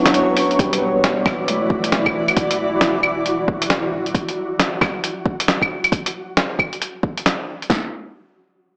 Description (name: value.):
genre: future garage.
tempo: 135 BPM.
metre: 4/4.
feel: swing 62% on 16ths.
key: E dorian.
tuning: A4 = 441 Hz.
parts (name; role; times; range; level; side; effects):
felt-muted upright piano; accompaniment; 0.0-2.9 s; G3 to E4; -25 LUFS; equal; sidechain pumping, tape echo.
granular cloud pad; sustained chords; 0.0-4.1 s; E3 to D5; -24 LUFS; equal; built-in reverb, sidechain pumping.
flickering grainy texture; texture; 0.2-5.9 s; F#3 to B4; -31 LUFS; equal; built-in reverb.
lo-fi sampler-style drum kit; drums; 0.1-7.7 s; claves, hi-hat, snare drum; -22 LUFS; equal; vintage 12-bit sampler grit.
soft dub sub bass; bass; 0.6-4.1 s; D1 to E1; -40 LUFS; equal; sidechain pumping.
deep house drum kit; drums; 0.6-7.8 s; kick drum, snare drum; -24 LUFS; equal; overdrive, vintage 12-bit sampler grit.
room: wet concert hall reverb, RT60 2.0 s.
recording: cassette tape, small speaker sound.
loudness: -20 LUFS.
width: mono.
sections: 0.6-7.7 A section; 7.7-8.8 B section.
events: break 0.0-0.6.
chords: 0.0 Dmaj7; 0.6 Em7; 4.1 N.C..